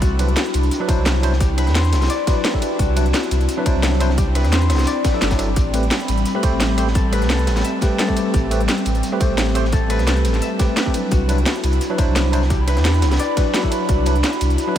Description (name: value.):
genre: liquid drum and bass.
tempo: 173 BPM.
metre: 4/4.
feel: straight.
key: unclear.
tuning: A4 = 440 Hz.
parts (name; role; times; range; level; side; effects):
airy breathy pad; sustained chords; 0.0-14.8 s; G3 to B5; -24 LUFS; equal; chorus.
Celtic harp; arpeggios; 0.0-14.8 s; F#4 to E5; -26 LUFS; left 6 dB; diffuse ambient delay.
warm sub bass; bass; 0.0-14.6 s; G1 to E2; -18 LUFS; equal; none.
crunchy breakbeat drum kit; drums; 0.0-14.7 s; hi-hat, snare drum; -30 LUFS; equal; high-pass filter on hats, high-pass filter on snare, high-pass filter on room.
drum and bass drum kit; drums; 0.0-14.8 s; hi-hat, ride cymbal, rim click, snare drum; -25 LUFS; equal; none.
electronic kick drum; drums; 0.0-14.8 s; none; -19 LUFS; equal; none.
tine electric piano; accompaniment; 0.2-14.8 s; F#3 to B5; -24 LUFS; equal; medium stereo tremolo, tape echo.
room: light reverb, small room ambience.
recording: none.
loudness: -16 LUFS.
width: side -11 dB against mid.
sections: 0.0-14.8 A section.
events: none.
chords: 0.0 Cmaj9#11; 5.6 Am9; 11.1 Cmaj9#11.